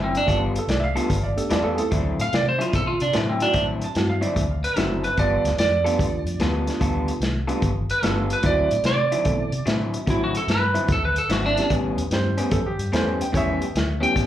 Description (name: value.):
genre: electric blues shuffle.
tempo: 147 BPM.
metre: 4/4.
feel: swing 67% on 8ths.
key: D mixolydian.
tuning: A4 = 440 Hz.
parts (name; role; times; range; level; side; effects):
clean lap steel guitar; melody; 0.0-14.3 s; C4 to G5; -22 LUFS; right 2 dB; slapback echo.
electric guitar through a small old amp; riff; 0.0-14.2 s; A2 to A4; -27 LUFS; left 2 dB; slapback echo.
vintage muted fingered electric bass; bass; 0.0-14.3 s; F#1 to C3; -26 LUFS; equal; none.
vintage drum kit; drums; 0.1-14.3 s; hi-hat, kick drum, snare drum; -26 LUFS; equal; none.
bright upright piano; second line; 0.6-4.4, 12.1-13.6 s; G4 to A5; -28 LUFS; right 2 dB; slapback echo, digital delay.
reed electric piano; accompaniment; 0.9-14.1 s; A3 to A4; -29 LUFS; right 3 dB; slapback echo.
room: light reverb.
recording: live gig heard through the venue's PA, club reverb.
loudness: -20 LUFS.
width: side -12 dB against mid.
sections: 0.0-14.3 A section.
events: none.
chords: 0.3 G9; 1.9 D9; 5.2 G9; 8.4 D9; 11.7 A9.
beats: | 0.27 0.68 1.09 1.50 | 1.91 2.32 2.73 3.14 | 3.54 3.95 4.36 4.77 | 5.18 5.58 5.99 6.40 | 6.81 7.22 7.62 8.03 | 8.44 8.85 9.26 9.66 | 10.07 10.48 10.89 11.30 | 11.71 12.11 12.52 12.93 | 13.34 13.75 14.16.